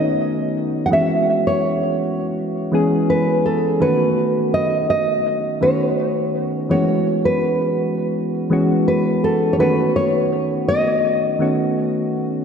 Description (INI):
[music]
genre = R&B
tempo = 83 BPM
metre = 4/4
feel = straight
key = E major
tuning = A4 = 442 Hz
[part]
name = nylon-string guitar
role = melody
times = 0.0-12.4 s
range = A4 to F#5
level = -20 LUFS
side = equal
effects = tape echo
[part]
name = soft electric-piano-like synth keys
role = accompaniment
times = 0.0-12.4 s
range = D#3 to G#4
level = -19 LUFS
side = equal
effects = chorus
[sound]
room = wet lush hall reverb, RT60 2.8 s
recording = dreamy mix soaked in reverb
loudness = -16 LUFS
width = side -6 dB against mid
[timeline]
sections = 0.0-12.4 A section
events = none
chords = 0.0 B9; 0.9 E69; 3.8 B9; 6.7 E69; 9.6 B9